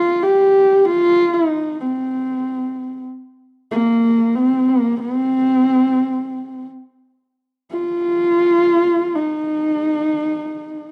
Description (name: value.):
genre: mongolian traditional.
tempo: free time.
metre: none.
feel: none.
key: C yu mode.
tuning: A4 = 437 Hz.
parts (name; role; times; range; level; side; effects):
dark horsehead fiddle; solo; 0.0-10.9 s; Bb3 to G4; -18 LUFS; equal; none.
room: moderate spring reverb, RT60 1.4 s, studio reverb.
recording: home recording on cassette.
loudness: -17 LUFS.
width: mono.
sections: 0.0-3.4 A section; 3.4-10.9 B section.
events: none.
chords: none.